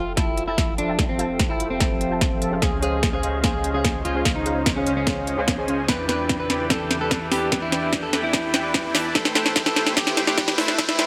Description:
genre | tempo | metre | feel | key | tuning
future bass | 147 BPM | 4/4 | half-time | unclear | A4 = 440 Hz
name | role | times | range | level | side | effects
electric guitar at the edge of break-up | melody | 0.0-11.1 s | C4 to B4 | -29 LUFS | equal | sidechain pumping, digital delay
ethereal airy pad | sustained chords | 0.1-11.1 s | Db3 to E5 | -38 LUFS | equal | none
soft supersaw | riff | 0.0-11.1 s | E3 to A5 | -31 LUFS | equal | sidechain pumping, low-pass filter
saturated sub bass | bass | 0.0-11.1 s | F1 to E2 | -37 LUFS | equal | sidechain pumping
riser | sound effects | 4.4-11.1 s | none | -38 LUFS | equal | none
soft round pluck | accompaniment | 0.2-5.8 s | Db4 to A5 | -34 LUFS | equal | ensemble chorus, sidechain pumping, digital delay
electronic kick drum | drums | 0.2-10.9 s | none | -28 LUFS | equal | overdrive
trap drum kit | drums | 0.2-11.1 s | hi-hat, snare drum | -25 LUFS | equal | overdrive
concert harp | arpeggios | 5.9-11.1 s | D4 to G5 | -34 LUFS | equal | sidechain pumping, digital delay
room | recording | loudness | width
light reverb | high-pass filter | -22 LUFS | mono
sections
0.0-11.1 A section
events
build-up 0.0-11.1; drum fill 0.0-11.1; filter sweep on supersaw synth 0.0-11.1; filter sweep 0.0-11.1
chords
0.0 Fmaj9; 2.6 Dbmaj7; 5.9 Em7; 9.2 Am9

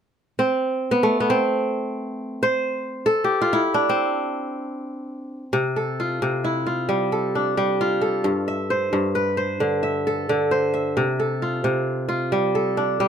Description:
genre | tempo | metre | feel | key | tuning
west african traditional | 88 BPM (dotted quarters) | 12/8 | straight | C major | A4 = 438 Hz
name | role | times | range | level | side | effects
kora | arpeggios | 0.4-13.1 s | G2 to E5 | -20 LUFS | equal | none
room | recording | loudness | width
light reverb | close, detailed microphones | -20 LUFS | side -8 dB against mid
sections
0.1-5.5 A section; 5.5-13.1 B section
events
kora solo 0.1-5.5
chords
0.1 N.C.; 5.5 C; 8.3 G; 11.0 C

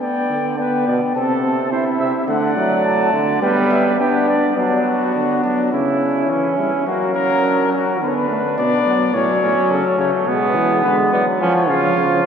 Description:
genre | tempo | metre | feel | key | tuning
classical, imitative canzona for brass ensemble | 106 BPM | 4/4 | straight | G major, B minor from 4.6 s | A4 = 441 Hz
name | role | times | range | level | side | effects
dark trumpet | melody | 0.0-12.2 s | D4 to A5 | -22 LUFS | left 6 dB | none
clear flugelhorn | second line | 0.0-12.2 s | A3 to E5 | -21 LUFS | right 3 dB | none
warm trombone | accompaniment | 0.0-12.3 s | E#3 to E4 | -21 LUFS | right 1 dB | none
clear bass trombone | bass | 0.3-12.2 s | A2 to B3 | -20 LUFS | right 1 dB | none
room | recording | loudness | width
wet cathedral reverb, RT60 4.6 s | dark, warm production | -15 LUFS | side -7 dB against mid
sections
0.0-4.6 A section; 4.6-12.3 B section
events
none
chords
0.0 G; 1.2 Am/C; 2.3 D; 3.4 G; 4.6 Bm/F#; 5.7 C#m; 6.9 F#; 8.0 Bm/D; 9.1 F#m/A; 10.3 G#dim/B; 11.4 C#

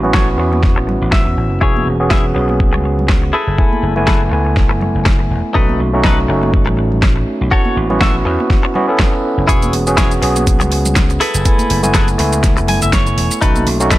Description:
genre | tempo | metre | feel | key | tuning
nu-disco, nu disco | 122 BPM | 4/4 | swing 55% on 16ths | E major | A4 = 441 Hz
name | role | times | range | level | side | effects
overdriven tine electric piano | accompaniment | 0.0-14.0 s | A3 to G#5 | -17 LUFS | right 1 dB | sidechain pumping, low-pass filter, analog delay
vintage slap bass | bass | 0.0-14.0 s | E1 to E2 | -17 LUFS | equal | sidechain pumping
congas | percussion | 0.0-13.6 s | none | -26 LUFS | right 2 dB | none
direct-recorded clean electric guitar | riff | 0.1-14.0 s | D#4 to G#5 | -20 LUFS | left 2 dB | lush chorus, low-pass filter, analog delay
electronic kick drum | drums | 0.1-14.0 s | none | -14 LUFS | equal | overdrive
pop drum kit | drums | 0.1-14.0 s | hi-hat, shaker, snare drum | -20 LUFS | equal | overdrive
room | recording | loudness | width
little or no reverb | none | -11 LUFS | side -16 dB against mid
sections
0.0-14.0 A section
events
filter sweep on tine electric piano 0.0-14.0; clean electric guitar fill 0.9-1.6, 12.4-13.4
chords
0.0 A6; 1.6 E6; 3.3 F#m11; 5.6 B7; 7.5 A6; 9.5 E6; 11.2 F#m11; 13.4 B7

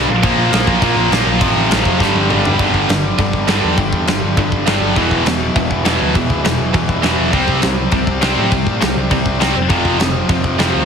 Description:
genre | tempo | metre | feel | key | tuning
punk rock | 203 BPM | 4/4 | straight | unclear | A4 = 442 Hz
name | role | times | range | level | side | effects
distorted electric guitar | riff | 0.0-10.8 s | E2 to C4 | -20 LUFS | left 1 dB | overdrive
tight distorted guitar | riff | 0.0-10.8 s | E2 to C4 | -19 LUFS | left 11 dB | distortion
tight distorted guitar | riff | 0.0-10.8 s | E2 to C4 | -19 LUFS | right 13 dB | distortion
overdriven picked electric bass | bass | 0.0-10.8 s | E1 to A2 | -21 LUFS | equal | none
big rock drum kit | drums | 0.2-10.7 s | crash cymbal, kick drum, snare drum, toms | -18 LUFS | equal | none
room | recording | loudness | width
light reverb | heavily compressed radio sound | -12 LUFS | side -6 dB against mid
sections
0.0-2.6 A section; 2.6-10.8 B section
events
drum fill 2.0-2.6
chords
0.1 Bb5; 1.4 F/A; 2.0 G5; 5.0 E5; 7.3 C5; 9.6 F5

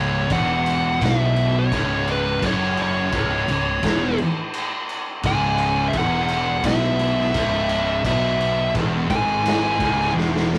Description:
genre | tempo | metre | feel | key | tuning
stoner and doom metal | 85 BPM | 4/4 | straight | C# minor | A4 = 440 Hz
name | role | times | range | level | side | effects
fuzz lead guitar | melody | 0.0-10.1 s | B4 to G#5 | -25 LUFS | equal | distortion
distorted electric guitar | riff | 0.0-10.6 s | C#2 to B2 | -30 LUFS | equal | overdrive
thick fuzz guitar | riff | 0.0-10.6 s | C#2 to B2 | -32 LUFS | equal | none
thick fuzz guitar | riff | 0.0-10.6 s | C#2 to B2 | -29 LUFS | equal | distortion
fuzz fingered electric bass | bass | 0.0-10.6 s | C#1 to B1 | -30 LUFS | equal | overdrive
raw garage drum kit | drums | 0.3-10.6 s | crash cymbal, kick drum, snare drum | -27 LUFS | equal | none
room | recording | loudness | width
light reverb | rough rehearsal-room recording, warm saturation | -21 LUFS | mono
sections
0.0-10.6 A section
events
drum fill 10.2-10.6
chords
0.0 C#m

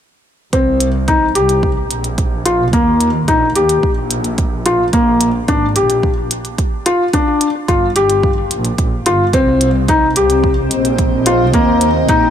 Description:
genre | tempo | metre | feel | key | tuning
piano and strings electronica | 109 BPM | 4/4 | straight | C minor | A4 = 444 Hz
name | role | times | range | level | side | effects
felt-muted upright piano | riff | 0.5-12.3 s | Bb3 to G4 | -14 LUFS | left 2 dB | ping-pong delay
warm symphonic double bass section | bass | 0.5-12.3 s | G1 to Eb2 | -19 LUFS | right 1 dB | sidechain pumping
electronic hi-hat | drums | 0.5-12.2 s | none | -20 LUFS | equal | none
electronic kick drum | drums | 0.5-12.2 s | none | -17 LUFS | right 2 dB | overdrive
granular cloud pad | sustained chords | 10.1-12.3 s | C4 to G5 | -18 LUFS | equal | built-in reverb, sidechain pumping
room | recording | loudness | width
light reverb, studio ambience | none | -12 LUFS | side -9 dB against mid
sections
0.5-12.3 A section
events
none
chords
0.5 C5; 2.7 Eb; 4.9 N.C.; 7.1 Gm; 9.3 Cm

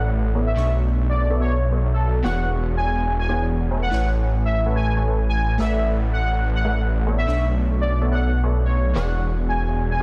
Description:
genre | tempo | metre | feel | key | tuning
future bass | 143 BPM | 4/4 | half-time | unclear | A4 = 438 Hz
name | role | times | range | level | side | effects
warm velvety synth lead | melody | 0.0-10.0 s | A4 to G#5 | -29 LUFS | equal | chorus, tape echo
glassy digital keys | accompaniment | 0.0-10.0 s | B2 to C#6 | -34 LUFS | equal | chorus, tape echo
supersaw stab | riff | 0.0-10.0 s | E3 to G#5 | -31 LUFS | equal | cassette tape, low-pass filter
detuned saw bass | bass | 0.0-10.0 s | E1 to B1 | -23 LUFS | equal | chorus
room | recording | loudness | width
digital ambience | dense, heavily limited modern master | -21 LUFS | mono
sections
0.0-10.0 A section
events
none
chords
0.0 D69/A; 0.6 Bm11; 2.2 E13; 3.9 Amaj9; 5.6 D69/A; 7.3 Bm11; 9.0 E13

